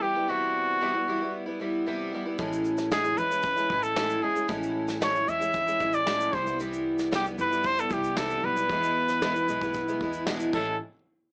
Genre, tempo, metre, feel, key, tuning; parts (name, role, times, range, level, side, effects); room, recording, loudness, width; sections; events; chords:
acoustic pop; 114 BPM; 4/4; straight; A major; A4 = 440 Hz
warm trumpet; melody; 0.0-10.8 s; F#4 to E5; -28 LUFS; equal; cassette tape
fingerpicked twelve-string acoustic guitar; accompaniment; 0.0-10.8 s; E2 to E4; -32 LUFS; equal; cassette tape
upright bass; bass; 2.4-10.8 s; E1 to E2; -43 LUFS; equal
soft brush drum kit; drums; 2.4-10.7 s; crash cymbal, kick drum, shaker, snare drum; -37 LUFS; equal; cassette tape
light reverb; home recording on cassette, small speaker sound; -28 LUFS; mono
0.0-10.8 A section
0.0 Cmaj7; 2.4 Amaj7; 6.3 Cmaj7; 8.7 E; 10.5 Amaj7; 10.8 N.C.